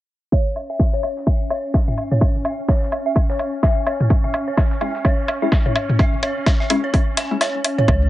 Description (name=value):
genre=minimal techno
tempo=127 BPM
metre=4/4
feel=swing 59% on 16ths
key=C# minor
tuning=A4 = 440 Hz
part: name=dark detuned synth bell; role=riff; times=0.3-8.0 s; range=C#5 to G#5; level=-25 LUFS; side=equal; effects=chorus, phaser, sidechain pumping, low-pass filter, tape echo
part: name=dusty soul sampler-style drum kit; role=drums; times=0.3-7.8 s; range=hi-hat, snare drum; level=-31 LUFS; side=equal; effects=high-pass filter on hats, high-pass filter on snare
part: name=electronic kick drum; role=drums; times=0.3-8.0 s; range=none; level=-17 LUFS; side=equal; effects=none
part: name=electronic woodblock and toms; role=percussion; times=0.3-8.0 s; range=none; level=-22 LUFS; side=equal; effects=digital delay
part: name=swarming drone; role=texture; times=0.6-8.1 s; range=C#4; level=-29 LUFS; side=left 1 dB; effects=built-in reverb, sidechain pumping
part: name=electronic hi-hat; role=drums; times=0.6-7.8 s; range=none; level=-22 LUFS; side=left 3 dB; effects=low-pass filter on hats
part: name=filtered dub chord stab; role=stabs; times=4.8-7.4 s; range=G#3 to E4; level=-24 LUFS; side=left 4 dB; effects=phaser, wide subtle chorus, digital delay
part: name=rubbery square bass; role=bass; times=7.9-8.1 s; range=C#2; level=-16 LUFS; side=equal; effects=sidechain pumping
room=light reverb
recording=low-pass filter, nothing above 10.9 kHz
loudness=-17 LUFS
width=side -15 dB against mid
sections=0.3-7.9 A section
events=filter sweep on drum 0.3-7.9; filter sweep on synth bell 0.3-7.9; filter sweep 0.3-7.9; kick drops out 7.4-7.9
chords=0.3 C#m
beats=| 0.32 0.80 1.27 1.74 | 2.21 2.69 3.16 3.63 | 4.10 4.58 5.05 5.52 | 5.99 6.46 6.94 7.41 | 7.88